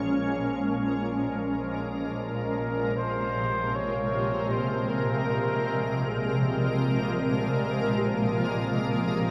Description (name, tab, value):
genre	ambient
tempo	free time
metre	none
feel	none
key	Bb dorian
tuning	A4 = 442 Hz
part	shimmering ambient pad	sustained chords	0.0-9.3 s	Bb2 to Bb4	-28 LUFS	equal	chorus, built-in reverb
part	felt-muted upright piano	arpeggios	0.0-9.3 s	G4 to Bb4	-43 LUFS	equal	none
part	warm symphonic double bass section	bass	0.0-9.3 s	Bb1	-41 LUFS	equal	none
part	mellow flugelhorn	melody	2.2-6.8 s	Ab4 to Db5	-35 LUFS	equal	delay
room	wet cathedral reverb, RT60 6.7 s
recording	in a vast, echoing space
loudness	-27 LUFS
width	mono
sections	0.0-9.3 A section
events	fade-in on double bass section 0.0-9.3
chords	0.0 Bbm7; 7.6 Fmadd9/Bb